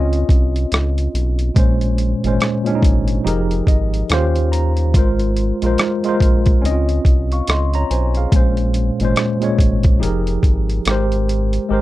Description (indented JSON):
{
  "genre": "lo-fi hip hop",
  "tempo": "71 BPM",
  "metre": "4/4",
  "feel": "swing 60% on 16ths",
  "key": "Ab major",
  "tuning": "A4 = 440 Hz",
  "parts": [
    { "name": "tine electric piano", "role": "accompaniment", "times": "0.0-11.8 s", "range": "Bb2 to Db6", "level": "-19 LUFS", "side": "equal", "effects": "medium stereo tremolo, low-pass filter" },
    { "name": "round analog bass", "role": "bass", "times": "0.0-11.8 s", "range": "F1 to Eb2", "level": "-18 LUFS", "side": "equal", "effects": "none" },
    { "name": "boom bap sampler-style drum kit", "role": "drums", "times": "0.1-11.7 s", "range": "hi-hat, kick drum, rim click", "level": "-16 LUFS", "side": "equal", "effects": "none" }
  ],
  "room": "light reverb",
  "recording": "dark, warm production",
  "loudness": "-14 LUFS",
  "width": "side -16 dB against mid",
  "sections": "0.0-11.7 A section",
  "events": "tine electric piano fill 3.3-4.9",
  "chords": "0.0 Dbmaj9; 1.6 Bbm9; 3.3 Fm11; 4.1 Eb13; 4.9 Ab69; 6.6 Dbmaj9; 8.3 Bbm9; 10.0 Fm11; 10.9 Abmaj9"
}